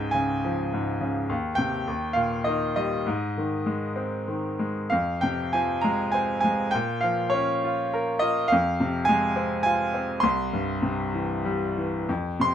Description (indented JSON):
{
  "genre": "classical, lyrical solo piano",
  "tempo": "93-108 BPM",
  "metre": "3/4",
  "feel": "rubato",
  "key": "Ab major, F minor from 4.9 s",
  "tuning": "A4 = 437 Hz",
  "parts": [
    { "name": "bright grand piano", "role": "solo", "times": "0.0-12.5 s", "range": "C2 to C6", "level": "-23 LUFS", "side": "equal", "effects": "none" }
  ],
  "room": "light reverb",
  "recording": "none",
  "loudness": "-23 LUFS",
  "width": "side -9 dB against mid",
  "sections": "0.0-4.9 A section; 4.9-12.5 B section",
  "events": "none",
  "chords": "0.0 Db; 1.3 Eb6; 1.9 Eb; 3.1 Ab; 4.9 Fm; 6.7 Bbm; 8.5 Fm; 10.2 C"
}